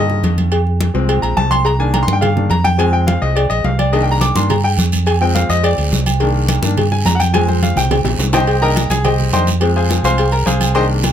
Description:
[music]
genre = latin, salsa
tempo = 211 BPM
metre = 4/4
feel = straight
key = unclear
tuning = A4 = 439 Hz
[part]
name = bright upright piano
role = accompaniment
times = 0.0-11.1 s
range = D3 to D6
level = -18 LUFS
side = left 2 dB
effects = none
[part]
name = fingered electric bass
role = bass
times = 0.0-11.1 s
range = Bb1 to G2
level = -16 LUFS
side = right 1 dB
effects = none
[part]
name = congas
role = percussion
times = 0.1-11.1 s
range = none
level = -22 LUFS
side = left 1 dB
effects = none
[part]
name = agogo bells and timbales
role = percussion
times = 0.2-11.1 s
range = none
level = -24 LUFS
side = right 9 dB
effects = none
[part]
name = cowbell and bongos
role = percussion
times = 0.2-11.1 s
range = none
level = -23 LUFS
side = left 4 dB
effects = none
[part]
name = guiro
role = percussion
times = 3.9-11.1 s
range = none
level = -26 LUFS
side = right 6 dB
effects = none
[sound]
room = little or no reverb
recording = close, detailed microphones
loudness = -12 LUFS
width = side -9 dB against mid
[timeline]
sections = 0.0-11.1 A section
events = upright piano solo 0.0-11.1; drum fill 7.3-8.5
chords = 0.0 Cm7 (rootless); 0.5 Fm; 1.7 Cm7; 2.8 Fm; 3.9 Cm7; 5.1 Fm; 6.2 Cm7; 7.3 Fm; 8.5 Cm7; 9.6 Fm

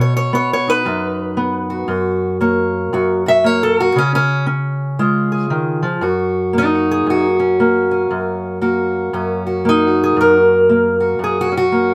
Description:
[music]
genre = acoustic country blues, solo or duo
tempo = 116 BPM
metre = 4/4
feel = swing 62% on 8ths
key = F# major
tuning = A4 = 440 Hz
[part]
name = fingerpicked steel-string acoustic guitar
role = solo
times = 0.0-11.9 s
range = F#2 to E5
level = -16 LUFS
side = equal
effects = none
[sound]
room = moderate booth ambience, RT60 0.2 s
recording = none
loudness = -16 LUFS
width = mono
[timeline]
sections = 0.0-6.0 A section; 6.0-11.9 B section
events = steel-string acoustic guitar solo 0.0-6.0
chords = 0.0 B; 1.9 F#; 4.0 C#; 6.0 F#

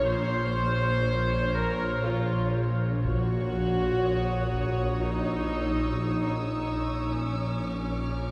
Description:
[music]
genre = cinematic, suspense film score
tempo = 60 BPM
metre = 3/4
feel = straight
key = unclear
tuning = A4 = 440 Hz
[part]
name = rich studio violin section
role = melody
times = 0.0-8.3 s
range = Db5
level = -40 LUFS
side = equal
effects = none
[part]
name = rich studio viola section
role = accompaniment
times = 0.0-8.3 s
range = Db4 to C5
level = -32 LUFS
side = equal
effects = none
[part]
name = dark studio double bass section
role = bass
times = 0.0-8.3 s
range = Bb1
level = -34 LUFS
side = equal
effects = none
[part]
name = warm studio cello section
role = bass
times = 0.0-8.3 s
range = Bb2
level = -35 LUFS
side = equal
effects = none
[part]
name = swarming drone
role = drone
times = 0.0-8.3 s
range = Bb1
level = -37 LUFS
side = equal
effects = built-in reverb
[part]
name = warm studio violin section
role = texture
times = 0.0-8.3 s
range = Db6 to F6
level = -43 LUFS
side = equal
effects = none
[part]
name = taiko ensemble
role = drums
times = 3.0-5.0 s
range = none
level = barely audible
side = none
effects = none
[sound]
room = wet cathedral reverb, RT60 6.2 s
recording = heard from further back in the room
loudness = -28 LUFS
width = mono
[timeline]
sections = 0.0-8.3 A section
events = none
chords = 0.0 Bbm; 3.0 Gb/Bb

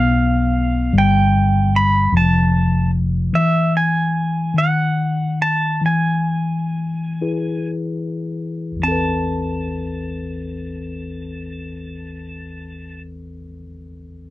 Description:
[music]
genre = folk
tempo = 35-50 BPM (dotted quarters)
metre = 6/8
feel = straight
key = A harmonic minor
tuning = A4 = 440 Hz
[part]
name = pedal steel guitar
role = melody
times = 0.0-13.0 s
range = E5 to B5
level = -21 LUFS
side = right 2 dB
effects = none
[part]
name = mellow tine electric piano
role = accompaniment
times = 0.0-14.3 s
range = A1 to B4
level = -21 LUFS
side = left 3 dB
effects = none
[part]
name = fretless electric bass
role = bass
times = 0.0-3.3 s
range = F1 to B1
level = -17 LUFS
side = equal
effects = none
[sound]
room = little or no reverb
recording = none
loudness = -16 LUFS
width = side -16 dB against mid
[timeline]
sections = 0.0-8.8 A section; 8.8-12.2 B section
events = slowing down 3.3-8.8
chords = 0.0 N.C.; 0.9 G; 2.1 F; 3.3 N.C.; 5.8 E; 8.8 Amadd9

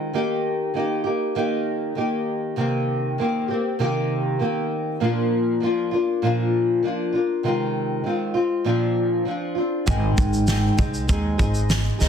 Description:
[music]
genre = acoustic pop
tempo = 99 BPM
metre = 4/4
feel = straight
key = unclear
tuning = A4 = 440 Hz
[part]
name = nylon-string guitar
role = accompaniment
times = 0.0-12.1 s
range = Ab2 to Ab4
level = -21 LUFS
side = equal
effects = double-tracked left and right
[part]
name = upright bass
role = bass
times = 9.9-12.1 s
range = Ab1 to Eb2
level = -22 LUFS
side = equal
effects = none
[part]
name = loose indie drum kit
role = drums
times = 9.9-12.1 s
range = kick drum, shaker, snare drum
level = -23 LUFS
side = equal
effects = none
[sound]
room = moderate studio reverb, RT60 0.8 s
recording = dense, heavily limited modern master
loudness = -20 LUFS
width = side -8 dB against mid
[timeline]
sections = 0.0-9.9 A section; 9.9-12.1 B section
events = none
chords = 0.1 Eb; 2.6 Cm7; 5.0 Bb; 7.4 Ab6/C; 8.7 Bbadd9; 9.9 Ab

